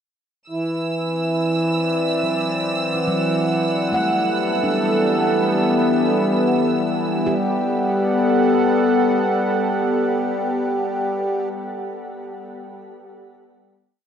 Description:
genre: ambient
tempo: 71 BPM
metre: 4/4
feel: straight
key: G major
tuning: A4 = 440 Hz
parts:
  - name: warm analog pad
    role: sustained chords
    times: 0.5-11.4 s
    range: E3 to F#5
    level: -20 LUFS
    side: left 1 dB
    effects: chorus, shimmer reverb
  - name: pedal harmonium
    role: drone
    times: 0.5-11.5 s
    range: E3 to G4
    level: -23 LUFS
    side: right 1 dB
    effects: none
  - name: rich studio violin section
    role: texture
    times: 0.5-7.3 s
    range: E6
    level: -29 LUFS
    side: right 2 dB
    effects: shimmer reverb
  - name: handpan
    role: arpeggios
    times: 2.2-12.0 s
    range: F#3 to F#5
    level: -28 LUFS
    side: right 1 dB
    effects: analog delay, shimmer reverb
room: wet huge ambient reverb, RT60 8.3 s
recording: dreamy mix soaked in reverb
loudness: -17 LUFS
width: side -8 dB against mid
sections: 0.5-7.3 A section; 7.3-10.6 final chord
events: fade-in on analog synth pad 0.5-7.3; fade-in on handpan 0.5-7.3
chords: 0.5 Cmaj9; 2.2 D9; 3.9 Gmaj9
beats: | 0.49 1.34 2.18 3.03 | 3.87 4.72 5.56 6.41 | 7.25 8.10 8.94 9.79

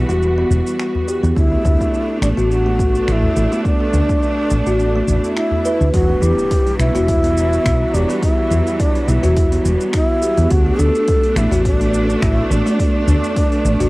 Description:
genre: organic downtempo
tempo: 105 BPM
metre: 4/4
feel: swing 55% on 16ths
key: unclear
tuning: A4 = 440 Hz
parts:
  - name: clear studio string section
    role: sustained chords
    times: 0.0-13.9 s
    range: E3 to F#4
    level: -25 LUFS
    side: right 1 dB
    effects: sidechain pumping, cassette tape
  - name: kalimba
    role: arpeggios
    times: 0.0-13.9 s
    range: A3 to B4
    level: -20 LUFS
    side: equal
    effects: cassette tape, tape echo
  - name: woody fretless electric bass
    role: bass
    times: 0.0-13.9 s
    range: E1 to E2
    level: -17 LUFS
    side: equal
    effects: tube saturation
  - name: deep house drum kit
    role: drums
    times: 0.1-13.9 s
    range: finger snaps, hi-hat, shaker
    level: -30 LUFS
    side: equal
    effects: overdrive, studio reverb, cassette tape
  - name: udu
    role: percussion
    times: 0.5-13.9 s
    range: none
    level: -22 LUFS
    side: left 1 dB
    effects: none
  - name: breathy low ney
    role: melody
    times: 1.4-13.9 s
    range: D4 to A4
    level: -20 LUFS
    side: equal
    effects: cassette tape, analog delay
  - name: electronic kick drum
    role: drums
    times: 1.4-13.5 s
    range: none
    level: -18 LUFS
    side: equal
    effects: overdrive, studio reverb, cassette tape
  - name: swell and impact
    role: sound effects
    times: 5.1-8.2 s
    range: none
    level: -30 LUFS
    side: right 1 dB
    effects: none
room: light reverb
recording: home recording on cassette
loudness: -14 LUFS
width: side -21 dB against mid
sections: 0.0-5.9 A section; 5.9-13.9 B section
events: swell 5.1-5.9; impact 5.9-8.2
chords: 0.0 Emadd9; 1.4 Bm7; 5.9 Emadd9; 10.5 Bm7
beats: 0.22 0.79 | 1.36 1.93 2.50 3.08 | 3.65 4.22 4.79 5.36 | 5.93 6.50 7.08 7.65 | 8.22 8.79 9.36 9.93 | 10.51 11.08 11.65 12.22 | 12.79 13.36

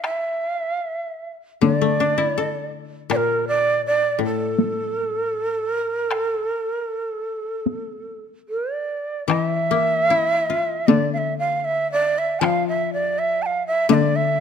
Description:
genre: japanese traditional, Japanese chamber music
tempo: 78 BPM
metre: 4/4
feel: uneven beats, rubato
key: A miyako bushi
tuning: A4 = 440 Hz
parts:
  - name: breathy shakuhachi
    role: melody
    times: 0.0-14.4 s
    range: A4 to A5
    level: -21 LUFS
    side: right 3 dB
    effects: none
  - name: taiko ensemble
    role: percussion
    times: 0.0-14.1 s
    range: none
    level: -22 LUFS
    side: left 2 dB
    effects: none
  - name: koto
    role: accompaniment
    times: 1.6-14.4 s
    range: A2 to A4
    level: -23 LUFS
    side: left 10 dB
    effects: none
room: light reverb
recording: close, detailed microphones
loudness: -19 LUFS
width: side -7 dB against mid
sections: 0.0-9.3 A section; 9.3-14.4 B section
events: none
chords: none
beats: | 0.03 0.83 1.61 2.37 | 3.10 3.84 4.58 5.34 | 6.11 6.89 7.67 8.48 | 9.29 10.09 10.87 11.65 | 12.42 13.17 13.90

